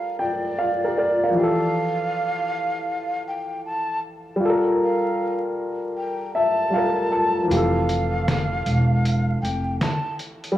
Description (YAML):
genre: lo-fi hip hop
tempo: 78 BPM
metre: 4/4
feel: swing 64% on 16ths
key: F major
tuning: A4 = 440 Hz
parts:
  - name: breathy mellow silver concert flute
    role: melody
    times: 0.0-10.2 s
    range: D5 to A5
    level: -27 LUFS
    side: right 1 dB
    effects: low-pass filter, cassette tape, analog delay
  - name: warm upright piano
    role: accompaniment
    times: 0.0-10.6 s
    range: E3 to A5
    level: -22 LUFS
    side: left 1 dB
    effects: cassette tape, low-pass filter
  - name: upright bass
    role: bass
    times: 7.5-9.8 s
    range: E1 to F1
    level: -22 LUFS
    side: equal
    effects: none
  - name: lo-fi sampler-style drum kit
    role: drums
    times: 7.5-10.6 s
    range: finger snaps, hi-hat, snare drum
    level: -26 LUFS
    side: equal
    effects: vintage 12-bit sampler grit
room: light reverb, small room ambience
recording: home recording on cassette, vinyl crackle, small room reverb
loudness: -20 LUFS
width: side -13 dB against mid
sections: 0.0-7.5 A section; 7.5-10.6 B section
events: kick muted 7.5-10.6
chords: 0.0 Gm9; 1.3 Fmaj9; 4.4 Gm9; 7.5 Fmaj9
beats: 0.58 | 1.34 2.11 2.88 3.65 | 4.42 5.19 5.96 6.73 | 7.50 8.27 9.04 9.81 | 10.58